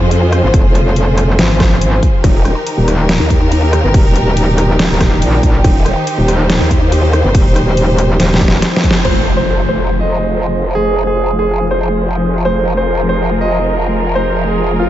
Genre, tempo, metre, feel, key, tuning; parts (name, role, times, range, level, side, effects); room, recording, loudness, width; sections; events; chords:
heavy wobble dubstep; 141 BPM; 4/4; half-time; F minor; A4 = 441 Hz
rich symphonic string section; sustained chords; 0.0-14.9 s; Eb3 to C5; -18 LUFS; equal; vintage 12-bit sampler grit, sidechain pumping, low-pass filter
growl bass; bass; 0.0-14.9 s; Eb1 to F2; -15 LUFS; equal; chorus, overdrive
dubstep drum kit; drums; 0.1-9.1 s; crash cymbal, hi-hat, rim click, snare drum; -18 LUFS; equal
metallic wobble bass; bass; 0.4-8.6 s; Eb1 to Bb1; -12 LUFS; equal; chorus, overdrive
electronic kick drum; drums; 0.5-8.9 s; -12 LUFS; equal
warm concert grand piano; melody; 9.0-14.9 s; F4 to Eb5; -16 LUFS; right 1 dB; diffuse ambient delay
impact; sound effects; 9.0-10.8 s; -21 LUFS; equal
moderate cathedral reverb, RT60 5.8 s; dreamy mix soaked in reverb, nothing above 7.8 kHz; -10 LUFS; side -13 dB against mid
0.0-9.0 A section; 9.0-14.9 B section
drop 0.0-9.0; drum fill 8.2-9.0; band accent 8.9; impact 9.0-10.8; filter sweep on string section 9.0-14.9
0.0 Fm; 2.2 Eb; 9.0 Fm